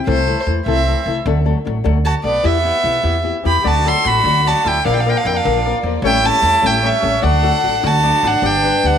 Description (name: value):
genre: mexican folk, mariachi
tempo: 100 BPM (dotted quarters)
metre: 6/8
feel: straight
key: unclear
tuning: A4 = 445 Hz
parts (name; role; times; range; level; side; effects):
- rich violin; melody; 0.1-9.0 s; C5 to C6; -16 LUFS; equal; none
- bright trumpet; second line; 0.1-9.0 s; A3 to A4; -25 LUFS; right 10 dB; none
- nylon-string guitar; accompaniment; 0.1-9.0 s; G2 to Bb4; -22 LUFS; left 10 dB; none
- upright bass; bass; 0.1-9.0 s; G1 to F2; -19 LUFS; right 1 dB; none
- rich studio violin section; sustained chords; 3.6-9.0 s; G3 to F#5; -26 LUFS; right 2 dB; none
- concert harp; arpeggios; 3.6-9.0 s; A4 to D5; -24 LUFS; left 8 dB; none
room: moderate echo chamber reverb, RT60 1.8 s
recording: 1960s-style stereo with parts hard left and right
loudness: -13 LUFS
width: side -8 dB against mid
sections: 0.0-9.0 A section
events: none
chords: 0.1 Am/C; 1.3 D; 2.5 Em; 3.7 D; 4.9 Bb; 6.0 A7; 7.2 D; 8.4 G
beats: | 0.06 0.66 | 1.26 1.85 | 2.45 3.05 | 3.65 4.26 | 4.86 5.46 | 6.05 6.64 | 7.23 7.83 | 8.43